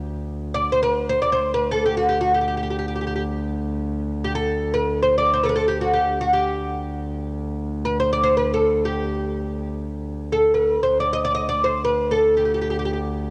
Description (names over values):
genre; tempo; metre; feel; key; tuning
Turkish makam ensemble; free time; none; none; D makam hicaz; A4 = 440 Hz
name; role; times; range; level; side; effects
warm double bass; drone; 0.0-13.3 s; D2; -30 LUFS; equal; none
oud; melody; 0.5-13.0 s; F#4 to Eb5; -22 LUFS; equal; cassette tape
room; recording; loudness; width
moderate lush hall reverb, RT60 2.5 s; home recording on cassette; -22 LUFS; mono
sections
0.0-13.3 A section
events
none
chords
none